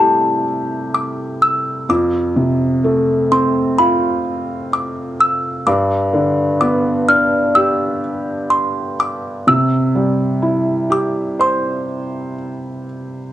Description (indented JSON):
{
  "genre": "children's music, lullaby",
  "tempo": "63 BPM",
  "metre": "4/4",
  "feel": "rubato",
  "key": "C major",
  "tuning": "A4 = 440 Hz",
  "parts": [
    { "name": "music box", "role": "melody", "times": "0.0-12.8 s", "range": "A5 to F6", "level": "-16 LUFS", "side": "equal", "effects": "none" },
    { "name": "felt-muted upright piano", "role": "accompaniment", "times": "0.0-13.3 s", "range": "F2 to C5", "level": "-17 LUFS", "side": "equal", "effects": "plate reverb" }
  ],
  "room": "wet small room ambience, RT60 0.5 s",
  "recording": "cassette tape",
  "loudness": "-14 LUFS",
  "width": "side -12 dB against mid",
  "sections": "0.0-13.3 A section",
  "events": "none",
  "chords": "0.0 C6; 1.9 F; 5.7 G; 9.5 C",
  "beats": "0.94 | 1.89 2.84 3.79 4.72 | 5.67 6.61 7.55 8.51 | 9.47 10.43 11.40 12.39"
}